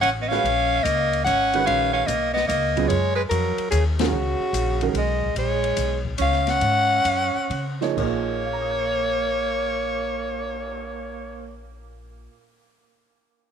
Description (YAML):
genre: modal jazz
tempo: 125-147 BPM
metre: 3/4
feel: swing 67% on 8ths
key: Bb phrygian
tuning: A4 = 440 Hz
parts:
  - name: growling soprano saxophone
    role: melody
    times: 0.0-11.6 s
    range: Gb4 to Gb5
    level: -23 LUFS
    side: left 4 dB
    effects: none
  - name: bright tenor saxophone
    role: second line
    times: 0.0-11.6 s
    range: Db3 to Db4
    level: -27 LUFS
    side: right 12 dB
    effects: tape echo
  - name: upright bass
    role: bass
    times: 0.0-12.3 s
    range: Ab1 to Db3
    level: -28 LUFS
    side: left 1 dB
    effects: none
  - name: open jazz drum kit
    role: drums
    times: 0.0-10.8 s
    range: crash cymbal, cymbal swell, hi-hat, kick drum, ride cymbal, snare drum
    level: -34 LUFS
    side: left 9 dB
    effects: none
  - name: warm baby grand piano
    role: accompaniment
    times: 0.3-4.9, 7.8-12.6 s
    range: Bb2 to F7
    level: -28 LUFS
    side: right 11 dB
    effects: none
room: light reverb, small room ambience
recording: 1960s-style stereo with parts hard left and right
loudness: -20 LUFS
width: side -8 dB against mid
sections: 0.0-5.4 A section; 5.4-8.0 B section; 8.0-10.9 C section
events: band accent 3.9; slowing down 5.4-8.0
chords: 0.4 Bbm7; 2.9 Dbsus4; 8.0 Bbm7